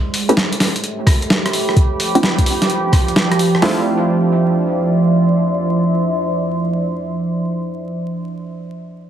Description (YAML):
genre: UK garage, two-step garage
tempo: 129 BPM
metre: 4/4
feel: swing 66% on 16ths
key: D dorian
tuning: A4 = 435 Hz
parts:
  - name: deep dark ambient pad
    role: texture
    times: 0.0-7.5 s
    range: F3 to C6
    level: -17 LUFS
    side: right 1 dB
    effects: chorus, built-in reverb, sidechain pumping
  - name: boom bap sampler-style drum kit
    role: drums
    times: 0.1-3.6 s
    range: hi-hat, rim click, snare drum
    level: -17 LUFS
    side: equal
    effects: none
  - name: punchy chord stab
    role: stabs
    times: 0.3-7.2 s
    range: A3 to G4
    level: -20 LUFS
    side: right 1 dB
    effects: chorus, cassette tape, tape echo
  - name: boom bap sampler-style drum kit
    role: drums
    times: 1.1-3.8 s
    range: hi-hat, kick drum, snare drum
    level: -14 LUFS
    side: equal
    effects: none
room: wet digital room reverb, RT60 1.2 s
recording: heavily compressed radio sound, vinyl crackle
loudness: -14 LUFS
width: side -10 dB against mid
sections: 0.0-3.6 A section; 3.6-7.3 B section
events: filter sweep on synth stab 0.0-3.6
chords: 0.0 A9; 1.5 F69; 3.6 Dm9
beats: 0.37 0.83 1.30 | 1.76 2.23 2.69 3.16 | 3.62 4.09 4.55 5.02 | 5.49 5.95 6.42 6.88